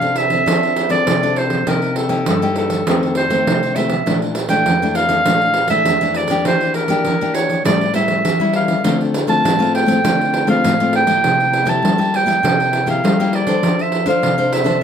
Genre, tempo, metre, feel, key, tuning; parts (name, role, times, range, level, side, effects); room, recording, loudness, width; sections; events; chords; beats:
samba and choro; 100 BPM; 4/4; straight; F major; A4 = 440 Hz
warm clarinet; melody; 0.0-14.8 s; A4 to A5; -17 LUFS; right 2 dB
nylon-string guitar; accompaniment; 0.0-14.8 s; F2 to C5; -18 LUFS; left 3 dB
pandeiro; percussion; 0.0-14.8 s; -20 LUFS; right 3 dB
moderate studio reverb, RT60 0.6 s; close, detailed microphones; -14 LUFS; side -8 dB against mid
0.0-14.8 A section
0.0 F6; 1.7 Cm7; 2.9 F7; 4.1 Bbmaj7#11; 6.5 Em7b5; 7.7 A7; 8.8 Dm7; 11.2 C7; 13.6 F6
0.47 1.06 | 1.66 2.26 2.86 3.46 | 4.06 4.66 5.26 5.86 | 6.46 7.05 7.65 8.25 | 8.85 9.45 10.05 10.64 | 11.24 11.84 12.44 13.04 | 13.64 14.23 14.83